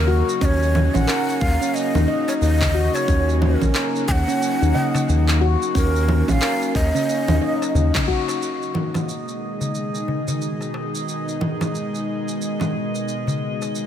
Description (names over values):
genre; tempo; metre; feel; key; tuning
organic downtempo; 90 BPM; 4/4; swing 60% on 16ths; unclear; A4 = 439 Hz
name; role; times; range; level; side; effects
breathy ney; melody; 0.0-8.0 s; Bb4 to Ab5; -26 LUFS; equal; digital delay
bowed-like drone; sustained chords; 0.0-13.9 s; Cb3 to Ab4; -27 LUFS; equal; built-in reverb, vintage 12-bit sampler grit, sidechain pumping
handpan; arpeggios; 0.0-8.4 s; Db4 to Eb5; -23 LUFS; equal; digital delay
round analog bass; bass; 0.0-7.9 s; Bb1 to Eb2; -19 LUFS; equal; sidechain pumping
electronic shaker, congas and handclaps; drums; 0.3-13.9 s; none; -26 LUFS; right 1 dB; none
electronic kick drum; drums; 0.4-8.2 s; none; -22 LUFS; equal; none
darbuka; percussion; 0.8-13.7 s; none; -28 LUFS; left 3 dB; none
drifting glass-harmonics texture; texture; 8.9-13.9 s; Eb5; -32 LUFS; right 1 dB; chorus, built-in reverb
room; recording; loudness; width
light reverb; none; -18 LUFS; side -10 dB against mid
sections
0.0-8.4 A section; 8.4-13.9 B section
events
band accent 7.9-8.3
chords
0.0 Ebm7; 8.4 Abm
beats
| 0.42 1.08 1.75 2.42 | 3.08 3.75 4.42 5.08 | 5.75 6.42 7.08 7.75 | 8.42 9.08 9.75 10.42 | 11.08 11.75 12.42 13.08 | 13.75